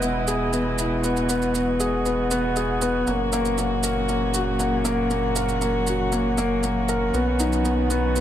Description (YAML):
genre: piano and strings electronica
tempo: 118 BPM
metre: 4/4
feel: straight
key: unclear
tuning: A4 = 440 Hz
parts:
  - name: dark string quartet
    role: sustained chords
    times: 0.0-8.2 s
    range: A#2 to D#5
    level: -26 LUFS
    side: equal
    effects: none
  - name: dark concert grand piano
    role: riff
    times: 0.0-8.2 s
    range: A#3 to A#4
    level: -23 LUFS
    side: left 1 dB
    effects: ping-pong delay
  - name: round analog bass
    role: bass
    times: 0.0-8.2 s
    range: E1 to B1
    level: -29 LUFS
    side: right 1 dB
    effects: none
  - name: shaker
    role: drums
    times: 0.0-8.2 s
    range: none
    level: -30 LUFS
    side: right 6 dB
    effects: overdrive
room: light reverb, small room ambience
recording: none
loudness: -20 LUFS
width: side -11 dB against mid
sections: 0.0-8.2 A section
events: none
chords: 0.0 Emaj7; 3.1 F#; 7.1 Badd9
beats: 0.02 0.53 | 1.04 1.55 2.06 2.56 | 3.07 3.58 4.09 4.60 | 5.11 5.62 6.12 6.63 | 7.14 7.65 8.16